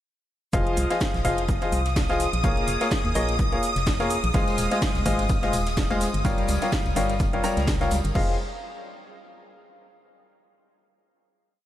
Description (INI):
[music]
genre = piano house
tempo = 126 BPM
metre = 4/4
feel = swing 56% on 16ths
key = F minor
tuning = A4 = 439 Hz
[part]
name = string machine, violins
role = sustained chords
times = 0.5-8.2 s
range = Eb6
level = -32 LUFS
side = equal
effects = ensemble chorus, sidechain pumping
[part]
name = bright grand piano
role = riff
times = 0.5-8.3 s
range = F3 to Bb5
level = -26 LUFS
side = left 1 dB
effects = sidechain pumping, tape echo
[part]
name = organ-like FM bass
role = bass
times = 0.5-8.4 s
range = Eb1 to Eb2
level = -28 LUFS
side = equal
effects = sidechain pumping
[part]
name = electronic kick drum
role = drums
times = 0.5-8.3 s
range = none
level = -26 LUFS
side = equal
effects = studio ambience
[part]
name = house drum kit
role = drums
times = 0.5-8.3 s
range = crash cymbal, hi-hat, snare drum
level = -33 LUFS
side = right 1 dB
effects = studio ambience
[part]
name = shaker and snare drum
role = drums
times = 0.5-8.0 s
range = none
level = -41 LUFS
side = equal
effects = none
[part]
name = tambourine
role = percussion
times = 4.3-8.1 s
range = none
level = -42 LUFS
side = left 4 dB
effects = none
[sound]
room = light reverb, small room ambience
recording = none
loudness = -21 LUFS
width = side -12 dB against mid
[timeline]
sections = 0.5-8.2 drop; 8.2-10.1 final chord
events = drop 0.5-8.2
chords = 0.5 Fm7; 2.4 Bbm7; 4.3 Ab6; 6.2 Gm7b5; 8.2 Fm7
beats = | 0.53 1.01 1.49 1.96 | 2.44 2.91 3.39 3.87 | 4.34 4.82 5.29 5.77 | 6.25 6.72 7.20 7.68 | 8.15